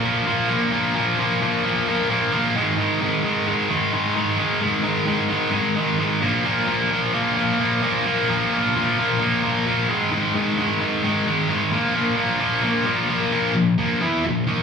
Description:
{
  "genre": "rock",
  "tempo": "131 BPM",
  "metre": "4/4",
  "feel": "straight",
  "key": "unclear",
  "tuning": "A4 = 440 Hz",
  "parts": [
    { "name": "high-gain distorted guitar", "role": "solo", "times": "0.0-14.6 s", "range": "Ab2 to E4", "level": "-18 LUFS", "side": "equal", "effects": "distortion, slapback echo" }
  ],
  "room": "moderate club reverb, RT60 0.6 s",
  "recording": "live gig heard through the venue's PA, club reverb, studio reverb, faint mains hum",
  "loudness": "-18 LUFS",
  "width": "side -6 dB against mid",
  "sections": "0.0-13.6 A section; 13.6-14.6 B section",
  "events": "none",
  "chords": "0.0 Bb5; 2.6 Ab5; 6.2 Bb5; 9.9 Ab5; 11.7 Bb5",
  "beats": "0.26 | 0.72 1.18 1.64 2.10 | 2.56 3.01 3.47 3.93 | 4.39 4.85 5.30 5.76 | 6.22 6.68 7.14 7.59 | 8.05 8.51 8.97 9.43 | 9.89 10.35 10.80 11.26 | 11.72 12.18 12.64 13.10 | 13.56 14.02 14.48"
}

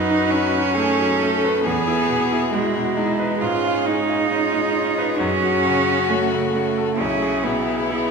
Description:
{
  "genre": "classical, slow romantic movement for piano quartet",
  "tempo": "67 BPM",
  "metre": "4/4",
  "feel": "rubato",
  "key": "E major",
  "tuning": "A4 = 440 Hz",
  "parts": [
    { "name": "dark violin", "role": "melody", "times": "0.0-8.1 s", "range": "C#4 to A4", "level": "-25 LUFS", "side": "left 9 dB", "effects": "none" },
    { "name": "rich cello", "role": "second line", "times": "0.0-8.1 s", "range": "G#3 to E#4", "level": "-20 LUFS", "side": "right 5 dB", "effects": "none" },
    { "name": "bright concert grand piano", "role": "accompaniment", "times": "0.0-8.1 s", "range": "B1 to B4", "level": "-25 LUFS", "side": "left 2 dB", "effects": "none" },
    { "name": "dark viola", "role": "accompaniment", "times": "0.0-8.1 s", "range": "E4 to B4", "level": "-27 LUFS", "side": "right 5 dB", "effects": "none" }
  ],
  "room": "wet recital hall reverb, RT60 1.8 s",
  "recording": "none",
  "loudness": "-17 LUFS",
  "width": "side -5 dB against mid",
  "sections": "0.0-8.1 A section",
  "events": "none",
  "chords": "0.0 B7/F#; 1.7 E; 3.4 C#/G#; 5.2 F#m; 7.0 E/B",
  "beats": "0.76 1.65 2.53 | 3.42 4.31 5.19 6.09 | 6.99 7.89"
}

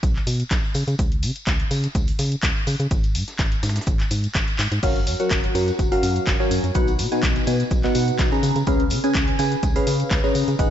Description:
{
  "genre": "piano house",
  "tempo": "125 BPM",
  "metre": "4/4",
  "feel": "swing 53% on 16ths",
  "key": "unclear",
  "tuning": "A4 = 439 Hz",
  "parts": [
    { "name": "organ-like FM bass", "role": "bass", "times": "0.0-10.7 s", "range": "F#1 to C#3", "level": "-24 LUFS", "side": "equal", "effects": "sidechain pumping" },
    { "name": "dusty soul sampler-style drum kit", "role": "drums", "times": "0.0-10.7 s", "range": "hi-hat, shaker, snare drum", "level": "-38 LUFS", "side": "right 1 dB", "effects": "none" },
    { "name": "electronic kick drum", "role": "drums", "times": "0.0-10.7 s", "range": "none", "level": "-22 LUFS", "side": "equal", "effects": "none" },
    { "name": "punchy analog drum machine", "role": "drums", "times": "0.0-10.7 s", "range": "crash cymbal, handclaps, hi-hat", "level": "-28 LUFS", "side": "left 1 dB", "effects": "none" },
    { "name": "tambourine", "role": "percussion", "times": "0.0-10.7 s", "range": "none", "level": "-37 LUFS", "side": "left 3 dB", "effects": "none" },
    { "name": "barking FM electric piano", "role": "riff", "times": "4.8-10.7 s", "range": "B2 to A#5", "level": "-22 LUFS", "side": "equal", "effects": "phaser, sidechain pumping, analog delay" }
  ],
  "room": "light reverb",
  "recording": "nothing above 7.8 kHz",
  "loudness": "-19 LUFS",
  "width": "side -10 dB against mid",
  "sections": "0.0-10.7 A section",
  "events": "drum fill 4.6",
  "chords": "0.0 N.C.; 4.8 F#maj7; 6.8 B; 8.4 C#7",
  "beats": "0.03 0.51 | 0.99 1.47 1.95 2.43 | 2.91 3.39 3.87 4.35 | 4.83 5.31 5.79 6.27 | 6.75 7.23 7.71 8.19 | 8.67 9.15 9.63 10.11 | 10.59"
}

